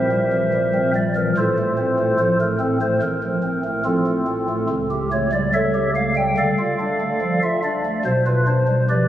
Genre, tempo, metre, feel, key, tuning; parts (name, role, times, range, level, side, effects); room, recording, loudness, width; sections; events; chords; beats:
classical, chorale-style piece for pipe organ; 72 BPM; 4/4; rubato; F major; A4 = 440 Hz
pipe organ, stopped flute; solo; 0.0-9.1 s; A1 to G5; -17 LUFS; equal
wet cathedral reverb, RT60 4.5 s; recorded on a phone in the room, club reverb, compression; -18 LUFS; side -12 dB against mid
0.0-9.1 A section
0.0 C7/Bb; 1.4 F/A; 4.7 A7/C#; 6.4 Dm; 8.0 G7/B
0.52 | 1.35 2.18 3.01 3.84 | 4.68 5.53 6.37 7.21 | 8.05 8.89